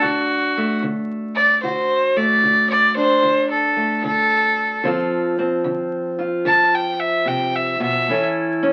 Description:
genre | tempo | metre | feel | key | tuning
acoustic country blues, solo or duo | 74 BPM | 4/4 | swing 66% on 8ths | unclear | A4 = 439 Hz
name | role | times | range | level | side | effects
rich fiddle | melody | 0.0-8.2 s | F#4 to A5 | -19 LUFS | equal | none
fingerpicked steel-string acoustic guitar | accompaniment | 0.0-8.7 s | A2 to A4 | -24 LUFS | equal | none
room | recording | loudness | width
moderate studio reverb, RT60 0.6 s | very old 78 rpm record, vinyl crackle | -19 LUFS | mono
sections
0.0-8.7 A section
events
none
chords
0.0 D; 4.8 Dm7; 8.1 A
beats
0.01 0.82 | 1.62 2.42 3.23 4.03 | 4.84 5.65 6.45 7.26 | 8.07

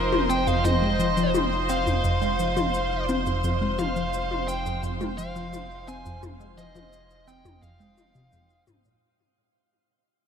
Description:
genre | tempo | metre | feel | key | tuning
ambient, sequencer-driven space music | 86 BPM | 4/4 | straight | unclear | A4 = 440 Hz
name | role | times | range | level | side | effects
biting lead guitar | melody | 0.0-8.6 s | C5 to Ab5 | -31 LUFS | equal | overdrive, ping-pong delay
lush unison pad | sustained chords | 0.0-9.0 s | F3 to C5 | -28 LUFS | equal | chorus
warm sub bass | bass | 0.0-9.0 s | F1 | -33 LUFS | equal | none
electronic toms and shaker | percussion | 0.1-9.0 s | none | -31 LUFS | left 5 dB | none
resonant blip pluck | riff | 0.3-8.9 s | F2 to C4 | -28 LUFS | equal | phaser, ping-pong delay
room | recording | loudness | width
moderate shimmer reverb, RT60 6.9 s | none | -22 LUFS | side -7 dB against mid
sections
0.0-9.0 A section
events
fade-out 0.0-9.0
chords
0.0 F7(no3)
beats
| 0.65 1.34 2.04 2.74 | 3.44 4.13 4.83 5.53 | 6.23 6.93 7.62 8.32

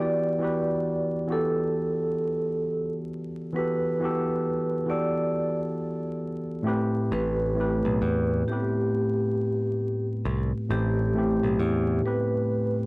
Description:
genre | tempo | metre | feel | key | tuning
lo-fi hip hop | 67 BPM | 4/4 | swing 63% on 16ths | E minor | A4 = 437 Hz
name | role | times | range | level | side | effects
vibraphone with medium mallets | melody | 0.0-12.7 s | G4 to D5 | -28 LUFS | right 1 dB | low-pass filter
tine electric piano | accompaniment | 0.0-12.9 s | A2 to D5 | -26 LUFS | equal | overdrive, cassette tape, low-pass filter
modern bright picked electric bass | bass | 7.1-12.0 s | A1 to E2 | -27 LUFS | equal | transformer saturation
room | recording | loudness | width
moderate small room reverb, RT60 0.5 s | dry, gritty hardware recording, vinyl crackle | -24 LUFS | side -25 dB against mid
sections
0.0-12.9 A section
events
none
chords
0.0 Em9; 6.7 Am9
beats
0.85 1.75 2.64 | 3.54 4.43 5.33 6.22 | 7.12 8.01 8.91 9.80 | 10.70 11.60 12.49

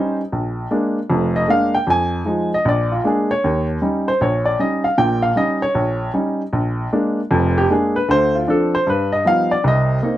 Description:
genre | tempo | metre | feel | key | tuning
solo jazz | 154 BPM | 4/4 | swing 66% on 8ths | Bb mixolydian | A4 = 440 Hz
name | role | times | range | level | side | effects
warm upright piano | solo | 0.0-10.2 s | F1 to Ab5 | -16 LUFS | equal | none
room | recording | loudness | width
light reverb | none | -16 LUFS | side -13 dB against mid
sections
0.0-10.2 A section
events
upright piano solo 0.0-10.2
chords
0.3 Bb7; 1.9 Fm7; 2.6 Bb7; 3.4 Eb7; 6.5 Bb7; 8.1 Dm7; 8.9 Gaug7; 9.6 Cm7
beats
| 0.31 0.70 1.09 1.48 | 1.87 2.25 2.64 3.03 | 3.42 3.81 4.20 4.58 | 4.97 5.36 5.75 6.14 | 6.53 6.92 7.30 7.69 | 8.08 8.47 8.86 9.25 | 9.64 10.03

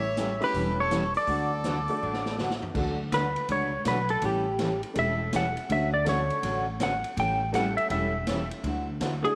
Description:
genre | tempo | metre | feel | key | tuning
country, western swing | 163 BPM | 4/4 | swing 65% on 8ths | D major | A4 = 440 Hz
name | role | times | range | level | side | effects
clean lap steel guitar | melody | 0.0-9.4 s | G4 to G5 | -30 LUFS | equal | none
clear fiddle | second line | 0.0-2.4 s | G4 to C#5 | -38 LUFS | equal | none
picked steel-string acoustic guitar | accompaniment | 0.0-9.1 s | D3 to A4 | -35 LUFS | equal | none
upright bass | bass | 0.0-9.2 s | E1 to D2 | -35 LUFS | equal | none
swinging big-band drum kit | drums | 0.2-9.3 s | crash cymbal, hi-hat, kick drum, ride cymbal, snare drum, toms | -38 LUFS | equal | none
honky-tonk upright piano | accompaniment | 0.4-9.4 s | F#3 to A4 | -38 LUFS | equal | none
room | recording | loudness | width
moderate echo chamber reverb, RT60 2.1 s | none | -28 LUFS | mono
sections
0.0-2.8 A section; 2.8-9.4 B section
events
drum fill 2.0-2.8; electric slide guitar solo 2.8-9.4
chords
0.0 A7; 1.3 D; 4.2 A7; 5.7 Dmaj7; 7.2 A7; 8.6 Dadd9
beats
0.17 0.54 0.91 | 1.28 1.65 2.01 2.38 | 2.75 3.12 3.49 3.86 | 4.22 4.59 4.96 5.33 | 5.70 6.06 6.43 6.80 | 7.17 7.54 7.90 8.27 | 8.64 9.01

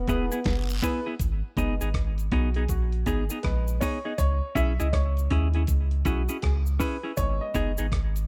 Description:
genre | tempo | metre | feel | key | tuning
roots reggae | 80 BPM | 4/4 | swing 64% on 16ths | G# minor | A4 = 440 Hz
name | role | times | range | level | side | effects
breathy trombone | second line | 0.0-0.8 s | B3 | -35 LUFS | equal | tape echo
warm sub bass | bass | 0.0-8.3 s | E1 to D#2 | -28 LUFS | equal | none
clean electric guitar | accompaniment | 0.1-7.9 s | B3 to G#4 | -33 LUFS | equal | tape echo
warm upright piano | stabs | 0.1-8.3 s | G#3 to E5 | -36 LUFS | equal | none
dusty soul sampler-style drum kit | drums | 0.1-8.3 s | hi-hat, kick drum, rim click, snare drum | -33 LUFS | equal | none
cabasa and guiro | percussion | 0.1-8.3 s | none | -41 LUFS | equal | none
room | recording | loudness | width
studio reverb | rough home demo mix | -26 LUFS | mono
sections
0.0-1.2 A section; 1.2-8.3 B section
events
upright piano solo 1.2-8.3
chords
0.0 E; 1.2 G#m; 4.2 C#m; 7.2 G#m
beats
0.45 | 1.20 1.95 2.69 3.44 | 4.18 4.93 5.68 6.43 | 7.17 7.92

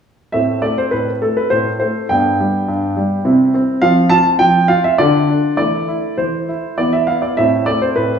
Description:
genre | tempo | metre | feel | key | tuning
classical-period piano sonatina | 102 BPM | 3/4 | rubato | A minor | A4 = 440 Hz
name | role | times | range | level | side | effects
warm grand piano | solo | 0.3-8.2 s | G2 to A5 | -13 LUFS | right 1 dB | none
room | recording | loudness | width
wet recital hall reverb, RT60 1.6 s | small room reverb | -13 LUFS | side -7 dB against mid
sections
0.3-8.2 A section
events
none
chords
0.3 Am; 2.1 G; 3.3 C; 3.8 F5; 5.0 Dm; 5.6 Am/E; 6.8 E5; 7.4 Am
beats
| 0.33 0.92 1.51 | 2.11 2.69 3.26 | 3.83 4.40 4.99 | 5.59 6.20 6.80 | 7.40 7.98

